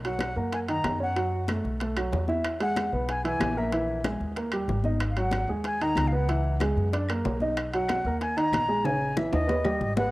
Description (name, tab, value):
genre	Afro-Cuban jazz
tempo	187 BPM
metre	4/4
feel	straight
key	B major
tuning	A4 = 440 Hz
part	upright bass	bass	0.0-10.1 s	G#1 to F#2	-30 LUFS	equal	none
part	congas	percussion	0.0-10.1 s	none	-37 LUFS	left 2 dB	none
part	timbales	percussion	0.0-10.0 s	none	-36 LUFS	right 3 dB	none
part	reedy concert flute	melody	0.1-10.1 s	D#5 to A#5	-30 LUFS	left 1 dB	cassette tape
part	dark baby grand piano	accompaniment	0.1-10.1 s	C#3 to E5	-29 LUFS	right 1 dB	none
part	bongos	percussion	0.2-10.0 s	none	-34 LUFS	left 4 dB	none
part	claves	percussion	0.2-9.8 s	none	-43 LUFS	left 3 dB	none
room	moderate spring reverb, RT60 2.8 s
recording	home recording on cassette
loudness	-24 LUFS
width	side -19 dB against mid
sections	0.0-10.1 A section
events	drum fill 8.9-10.1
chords	0.0 Bmaj9; 1.2 F#madd11; 1.8 B5; 2.4 E; 3.7 Emaj7#11/A#; 4.4 D#; 5.0 G#m7; 6.3 C#madd11; 6.9 F#aug; 7.6 Bmaj7; 8.9 A#m7b5; 9.5 D#aug